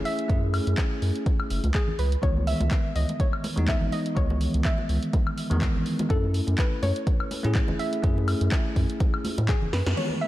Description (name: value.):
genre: deep house.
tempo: 124 BPM.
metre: 4/4.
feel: swing 55% on 16ths.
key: unclear.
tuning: A4 = 439 Hz.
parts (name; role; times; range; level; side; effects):
soft round pluck; melody; 0.0-10.3 s; G#4 to E5; -33 LUFS; equal; chorus, analog delay.
bell-like tine electric piano; stabs; 0.0-10.3 s; D#3 to A4; -30 LUFS; equal; sidechain pumping, low-pass filter, tape echo.
punchy analog drum machine; drums; 0.1-10.1 s; crash cymbal, handclaps, hi-hat, snare drum, woodblock; -34 LUFS; left 1 dB; none.
round analog bass; bass; 0.3-9.9 s; F#1 to A2; -25 LUFS; equal; sidechain pumping.
electronic kick drum; drums; 0.3-9.6 s; none; -25 LUFS; equal; none.
congas; percussion; 0.4-10.2 s; none; -36 LUFS; right 1 dB; none.
room: light reverb, digital ambience.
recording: none.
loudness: -22 LUFS.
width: side -15 dB against mid.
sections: 0.0-10.0 A section.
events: drum fill 9.7; band accent 9.9.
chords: 0.0 F#m9; 2.2 C#m9; 6.1 F#m9.